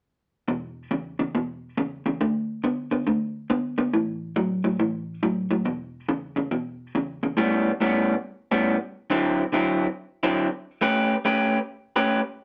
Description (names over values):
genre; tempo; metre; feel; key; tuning
blues; 139 BPM; 4/4; swing 65% on 8ths; A mixolydian from 7.4 s; A4 = 441 Hz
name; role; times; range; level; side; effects
electric guitar through a small old amp; solo; 0.5-12.2 s; E2 to B4; -25 LUFS; equal; none
room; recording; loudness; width
moderate studio reverb, RT60 0.6 s; none; -25 LUFS; mono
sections
0.5-7.4 A section; 7.4-12.4 B section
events
none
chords
0.5 E5; 2.2 D5; 3.9 A5; 5.7 E5; 7.4 A9; 9.1 D9; 10.8 A9